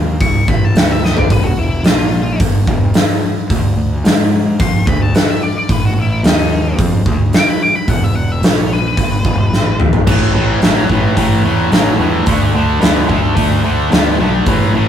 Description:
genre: blues rock power trio and southern rock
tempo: 110 BPM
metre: 4/4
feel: straight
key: unclear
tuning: A4 = 442 Hz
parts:
  - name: fuzz fingered electric bass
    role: bass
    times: 0.0-14.9 s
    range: E1 to G#2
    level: -17 LUFS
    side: equal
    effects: overdrive
  - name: octave-fuzz lead guitar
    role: melody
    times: 0.2-9.8 s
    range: D#4 to D6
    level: -20 LUFS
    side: left 2 dB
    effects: distortion
  - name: huge arena drum kit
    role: drums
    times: 0.2-14.6 s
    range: crash cymbal, hi-hat, kick drum, snare drum, toms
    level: -13 LUFS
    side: equal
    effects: none
  - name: sludgy distorted guitar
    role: riff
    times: 10.1-14.9 s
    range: A2 to B3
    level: -15 LUFS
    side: equal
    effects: overdrive
room: moderate small room reverb, RT60 0.5 s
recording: rough rehearsal-room recording, warm saturation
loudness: -11 LUFS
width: side -9 dB against mid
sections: 0.0-10.1 A section; 10.1-14.9 B section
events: lead electric guitar solo 0.0-10.1; drum fill 1.0, 9.5-10.1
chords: 0.2 A; 0.8 Dadd9; 1.3 Esus2; 1.9 Bb5; 2.4 Em; 3.5 N.C.; 4.6 Dm7; 5.7 A5; 6.2 N.C.; 6.8 Dm6; 7.9 Esus2; 8.4 Bbm; 9.0 E5; 9.5 Asus2; 10.1 A5; 12.3 D5

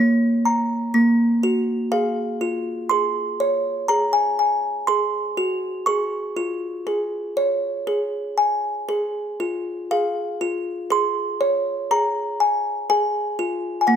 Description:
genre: children's music, lullaby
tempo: 60 BPM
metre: 4/4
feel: rubato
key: Db major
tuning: A4 = 440 Hz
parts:
  - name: music box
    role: solo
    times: 0.0-14.0 s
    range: Bb3 to Db6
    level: -19 LUFS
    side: equal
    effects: none
room: moderate recital hall reverb, RT60 1.7 s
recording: none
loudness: -20 LUFS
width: side -8 dB against mid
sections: 0.0-9.9 A section; 9.9-14.0 A section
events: none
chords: 0.0 Gb; 1.9 Db; 3.9 Ab7; 5.9 Db

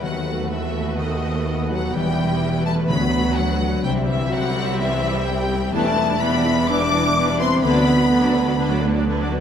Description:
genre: classical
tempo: 126 BPM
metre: 4/4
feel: rubato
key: unclear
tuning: A4 = 440 Hz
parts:
  - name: rich symphonic violin section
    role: melody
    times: 0.0-8.8 s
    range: D#5 to D6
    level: -25 LUFS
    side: left 3 dB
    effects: none
  - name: rich symphonic violin section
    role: second line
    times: 0.0-9.4 s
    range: D4 to E5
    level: -29 LUFS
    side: left 2 dB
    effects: none
  - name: clear symphonic viola section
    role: accompaniment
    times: 0.0-9.4 s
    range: D3 to D4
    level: -26 LUFS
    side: right 2 dB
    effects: none
  - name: mellow French horn section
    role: sustained chords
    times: 0.0-8.8 s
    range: D#3 to D4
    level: -23 LUFS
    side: equal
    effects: none
  - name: concert harp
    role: arpeggios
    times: 0.0-9.4 s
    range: C3 to E4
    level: -26 LUFS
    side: left 6 dB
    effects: none
  - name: rich symphonic cello section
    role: bass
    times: 0.0-9.4 s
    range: C2 to E2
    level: -27 LUFS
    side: right 4 dB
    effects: none
  - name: warm symphonic double bass section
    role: bass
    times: 0.0-9.4 s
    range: E1 to D#2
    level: -27 LUFS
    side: right 4 dB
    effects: none
  - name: timpani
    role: percussion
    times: 2.9-3.6 s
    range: D3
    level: -30 LUFS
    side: equal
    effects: none
room: wet concert hall reverb, RT60 1.9 s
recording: none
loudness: -18 LUFS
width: side -8 dB against mid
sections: 0.0-9.4 A section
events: none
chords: 0.0 B7/D#; 1.9 Em; 2.9 Bm/D; 3.9 C; 5.7 Em7; 7.6 Bm/D

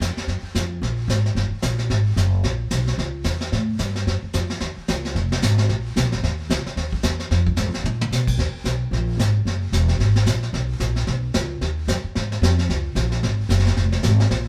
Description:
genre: jazz, small-group swing and bop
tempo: 223 BPM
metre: 4/4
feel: swing 58% on 8ths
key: Eb minor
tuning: A4 = 441 Hz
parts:
  - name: upright bass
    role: bass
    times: 0.0-14.5 s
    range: Fb1 to Cb3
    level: -23 LUFS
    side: equal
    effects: none
  - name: vintage brush drum kit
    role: drums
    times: 0.0-14.5 s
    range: brushed snare drum, crash cymbal, hi-hat, kick drum, snare drum, toms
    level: -28 LUFS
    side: equal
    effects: none
room: moderate studio reverb, RT60 0.7 s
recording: band playing live in one room, faint mains hum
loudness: -22 LUFS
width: mono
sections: 0.0-8.4 A section; 8.4-14.5 B section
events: drum fill 7.8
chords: none

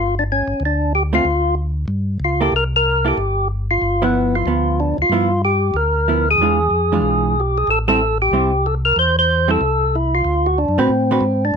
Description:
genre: jazz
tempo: 186 BPM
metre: 4/4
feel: swing 61% on 8ths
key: G mixolydian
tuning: A4 = 440 Hz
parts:
  - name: percussive tonewheel organ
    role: melody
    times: 0.0-11.6 s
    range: B3 to C5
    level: -17 LUFS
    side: left 1 dB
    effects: slow rotary speaker, overdrive
  - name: mellow tonewheel organ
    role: bass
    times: 0.0-11.6 s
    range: G1 to A2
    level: -20 LUFS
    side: equal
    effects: slow rotary speaker
  - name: vintage hollow-body jazz guitar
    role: accompaniment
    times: 1.1-11.2 s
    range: D3 to B4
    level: -21 LUFS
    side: right 5 dB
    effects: none
room: light reverb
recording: close, detailed microphones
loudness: -15 LUFS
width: side -6 dB against mid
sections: 0.0-11.6 A section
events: none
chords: 0.0 G5; 1.2 Dm; 1.9 Gsus2; 2.5 C5; 3.8 G6; 6.4 E7b9; 7.7 Am7; 10.3 D6

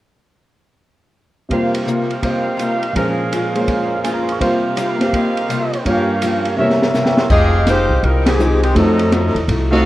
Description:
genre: jazz, big band swing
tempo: 166 BPM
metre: 4/4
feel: swing 65% on 8ths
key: F minor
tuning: A4 = 440 Hz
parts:
  - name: picked steel-string acoustic guitar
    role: accompaniment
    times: 1.5-9.9 s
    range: G2 to G4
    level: -23 LUFS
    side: left 3 dB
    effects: none
  - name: warm grand piano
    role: accompaniment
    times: 1.5-9.8 s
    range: G2 to Db6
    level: -19 LUFS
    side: equal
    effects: none
  - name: clear trumpet section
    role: stabs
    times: 1.5-9.9 s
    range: F4 to Eb6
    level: -20 LUFS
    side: right 2 dB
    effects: none
  - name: open jazz drum kit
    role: drums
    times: 1.5-9.6 s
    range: crash cymbal, hi-hat, kick drum, ride cymbal, snare drum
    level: -22 LUFS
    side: equal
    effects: none
  - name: bright saxophone section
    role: melody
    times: 7.3-9.5 s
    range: Eb3 to Eb5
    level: -18 LUFS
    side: left 1 dB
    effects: none
  - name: upright bass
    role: bass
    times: 7.3-9.9 s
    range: F1 to F2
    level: -16 LUFS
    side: equal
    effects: none
room: light reverb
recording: worn, warbling old tape, cassette tape, warbly pitch drift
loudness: -14 LUFS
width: side -16 dB against mid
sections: 1.5-7.3 A section; 7.3-9.9 B section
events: drum fill 6.6-7.3; band accent 8.2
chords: 1.5 C7sus4; 3.0 Bbm7; 4.4 C7sus4; 5.9 Gm7b5; 6.6 C7b9; 7.3 Fm9; 8.8 F7b9

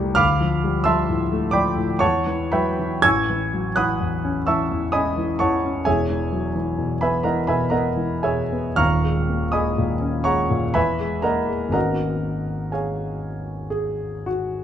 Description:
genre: classical, impressionist solo piano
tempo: 62 BPM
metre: 3/4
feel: uneven beats, rubato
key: unclear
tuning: A4 = 440 Hz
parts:
  - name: warm concert grand piano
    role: solo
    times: 0.0-14.6 s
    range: D#1 to G#6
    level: -19 LUFS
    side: equal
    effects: none
room: light reverb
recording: close, detailed microphones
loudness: -19 LUFS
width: side -10 dB against mid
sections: 0.0-14.6 A section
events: none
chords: 0.2 Dm7; 2.0 Em; 3.0 Amaj7; 5.9 Emaj7#11; 8.8 D#7sus4; 10.8 Emaj7; 11.8 G#m11

